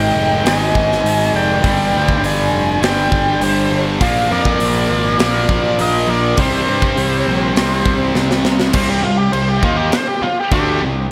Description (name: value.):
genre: hard rock.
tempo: 101 BPM.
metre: 4/4.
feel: straight.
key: C minor.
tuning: A4 = 445 Hz.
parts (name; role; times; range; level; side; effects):
biting lead guitar; melody; 0.0-10.8 s; F4 to Ab5; -21 LUFS; equal; overdrive, tape echo.
bluesy overdriven lead guitar; second line; 0.0-8.1 s; G4 to Eb5; -25 LUFS; equal; distortion, slapback echo.
distorted electric guitar; riff; 0.0-11.1 s; G2 to Eb4; -26 LUFS; equal; none.
distorted electric guitar; riff; 0.0-11.1 s; G2 to Eb4; -25 LUFS; equal; overdrive, slapback echo.
heavy high-gain guitar; riff; 0.0-11.1 s; G2 to Eb4; -26 LUFS; equal; distortion, slapback echo.
fuzz picked electric bass; bass; 0.0-11.1 s; F1 to G2; -22 LUFS; equal; overdrive.
tight metal drum kit; drums; 0.5-10.7 s; crash cymbal, hi-hat, kick drum, snare drum; -22 LUFS; equal; none.
room: moderate concert hall reverb, RT60 2.1 s.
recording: big arena sound.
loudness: -15 LUFS.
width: mono.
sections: 0.0-8.7 A section; 8.7-11.1 B section.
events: drum fill 8.1-8.7; lead electric guitar solo 8.7-11.1.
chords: 0.0 Ab5; 1.6 G5; 4.0 Bb; 6.4 C5; 8.7 Cm.